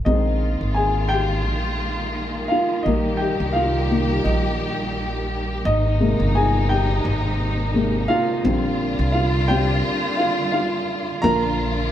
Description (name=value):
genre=pop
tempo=86 BPM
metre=4/4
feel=swing 56% on 16ths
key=unclear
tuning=A4 = 438 Hz
part: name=dark upright piano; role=accompaniment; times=0.0-11.9 s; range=C3 to Bb5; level=-22 LUFS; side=left 1 dB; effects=none
part: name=upright bass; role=bass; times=0.0-11.9 s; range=G1 to C2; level=-23 LUFS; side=equal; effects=none
part: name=warm studio string section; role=sustained chords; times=0.1-11.9 s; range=C3 to G4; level=-26 LUFS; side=equal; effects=none
room=wet stone room reverb, RT60 1.2 s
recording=band playing live in one room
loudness=-18 LUFS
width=side -11 dB against mid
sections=0.1-11.2 A section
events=upright piano solo 0.1-11.2; break 9.8-11.2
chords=0.1 Bb7sus4; 2.9 Eb/Bb; 5.7 Abadd9; 8.4 Bb6; 11.2 Bb